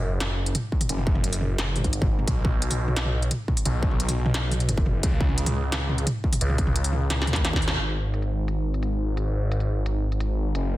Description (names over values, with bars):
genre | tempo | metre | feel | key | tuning
half-time drum and bass | 174 BPM | 4/4 | half-time | unclear | A4 = 437 Hz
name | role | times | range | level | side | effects
phased detuned saw bass | bass | 0.0-10.8 s | F#1 to D#2 | -25 LUFS | equal | phaser
industrial drum kit | drums | 0.2-10.6 s | hi-hat, snare drum, toms | -27 LUFS | equal | low-pass filter on snare, studio reverb, low-pass filter on hats, low-pass filter on toms
electronic kick drum | drums | 0.7-7.6 s | none | -24 LUFS | equal | distortion, studio reverb
room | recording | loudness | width
digital ambience | dense, heavily limited modern master | -22 LUFS | side -16 dB against mid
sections
0.0-7.8 A section; 7.8-10.8 B section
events
drum fill 7.1-7.8; band accent 7.7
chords
none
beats
0.21 0.55 | 0.90 1.24 1.59 1.93 | 2.28 2.62 2.96 3.31 | 3.65 4.00 4.34 4.69 | 5.03 5.38 5.72 6.07 | 6.41 6.76 7.10 7.45 | 7.79 8.14 8.48 8.83 | 9.17 9.52 9.86 10.21 | 10.55